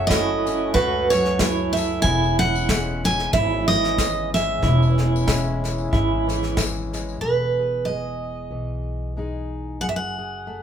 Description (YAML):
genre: acoustic folk duo or small band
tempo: 93 BPM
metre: 4/4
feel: swing 55% on 8ths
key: E major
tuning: A4 = 440 Hz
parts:
  - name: picked steel-string acoustic guitar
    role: melody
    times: 0.0-10.6 s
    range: B4 to G#5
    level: -23 LUFS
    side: right 2 dB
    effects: none
  - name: fingerpicked steel-string acoustic guitar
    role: accompaniment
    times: 0.0-10.6 s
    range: E2 to G#4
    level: -31 LUFS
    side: left 3 dB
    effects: none
  - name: hand-pumped harmonium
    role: sustained chords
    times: 0.0-7.2 s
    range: C#3 to G#4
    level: -31 LUFS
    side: left 4 dB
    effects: none
  - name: electric guitar through a small old amp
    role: arpeggios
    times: 0.0-6.6 s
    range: E4 to F#4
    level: -26 LUFS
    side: right 6 dB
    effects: tremolo
  - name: upright bass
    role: bass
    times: 0.0-10.6 s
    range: E1 to C#2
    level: -26 LUFS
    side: equal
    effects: none
  - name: soft brush drum kit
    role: drums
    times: 0.1-7.0 s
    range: kick drum, snare drum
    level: -26 LUFS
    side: equal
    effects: none
  - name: tambourine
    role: percussion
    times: 0.1-7.2 s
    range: none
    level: -35 LUFS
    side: left 7 dB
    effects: none
room: moderate large studio reverb, RT60 0.8 s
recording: band playing live in one room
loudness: -19 LUFS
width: side -8 dB against mid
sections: 0.0-7.2 A section; 7.2-10.6 B section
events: none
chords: 0.0 F#m; 2.0 C#m/E; 7.2 Emaj7; 9.8 F#madd9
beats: 0.11 0.75 1.40 | 2.05 2.69 3.34 3.98 | 4.63 5.28 5.92 6.57 | 7.22 7.87 8.52 9.17 | 9.82 10.47